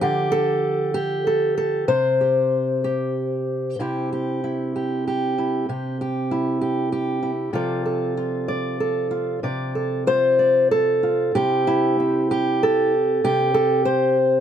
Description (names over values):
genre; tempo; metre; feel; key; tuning
folk, solo fingerstyle acoustic guitar; 64 BPM (dotted quarters); 6/8; rubato; C major; A4 = 440 Hz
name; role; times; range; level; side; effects
fingerpicked steel-string acoustic guitar; solo; 0.0-14.4 s; C3 to D5; -19 LUFS; equal; none
room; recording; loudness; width
light reverb; none; -19 LUFS; side -9 dB against mid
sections
0.0-3.8 A section; 3.8-11.3 B section; 11.3-14.4 C section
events
none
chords
0.0 Dm; 1.9 C5; 3.8 C; 7.5 F6/C; 11.3 C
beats
| 0.03 0.95 | 1.88 2.83 | 3.79 4.74 | 5.68 6.60 | 7.53 8.47 | 9.42 10.38 | 11.34 12.30 | 13.23 14.16